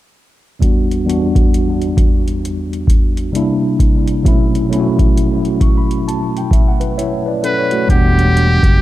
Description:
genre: lo-fi hip hop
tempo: 66 BPM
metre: 4/4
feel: swing 62% on 16ths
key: E dorian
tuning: A4 = 440 Hz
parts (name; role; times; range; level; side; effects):
- tine electric piano; accompaniment; 0.6-8.8 s; E2 to C#6; -16 LUFS; equal; medium stereo tremolo, cassette tape, low-pass filter, analog delay
- booming analog drum machine; drums; 0.6-8.8 s; hi-hat, kick drum; -14 LUFS; equal; none
- trumpet with metal mute; melody; 7.4-8.8 s; G4 to B4; -16 LUFS; equal; low-pass filter
- fingered electric bass; bass; 7.9-8.8 s; E1 to F#1; -13 LUFS; equal; none
room: light reverb, digital ambience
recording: echo-heavy mix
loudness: -12 LUFS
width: side -15 dB against mid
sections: 0.6-7.9 A section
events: filter sweep on tine electric piano 0.6-7.9; tine electric piano fill 5.2-7.9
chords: 0.6 Em7; 3.3 C9; 4.2 B9sus4; 7.9 Em7

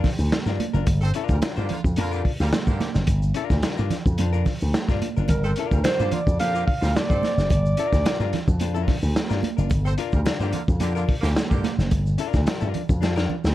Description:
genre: funk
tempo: 109 BPM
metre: 4/4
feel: straight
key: G minor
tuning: A4 = 440 Hz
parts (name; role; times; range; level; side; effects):
- archtop guitar, miked and amplified; accompaniment; 0.0-13.4 s; D4 to C5; -30 LUFS; left 10 dB; none
- crunchy breakbeat drum kit; drums; 0.0-13.5 s; hi-hat, kick drum, snare drum; -24 LUFS; equal; none
- congas; percussion; 0.0-13.4 s; none; -30 LUFS; right 8 dB; none
- slap bass with an envelope filter; bass; 0.2-13.5 s; F#1 to G2; -23 LUFS; equal; none
- tube shaker; percussion; 0.2-13.5 s; none; -48 LUFS; left 4 dB; none
- warm horn section; second line; 1.0-11.7 s; D3 to C5; -33 LUFS; right 3 dB; none
- breathy alto saxophone; melody; 5.3-8.6 s; Bb4 to F5; -25 LUFS; right 2 dB; none
room: small room ambience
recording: dark, warm production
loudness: -20 LUFS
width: side -14 dB against mid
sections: 0.0-13.5 A section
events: drum fill 13.0-13.5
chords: 0.0 Gm7

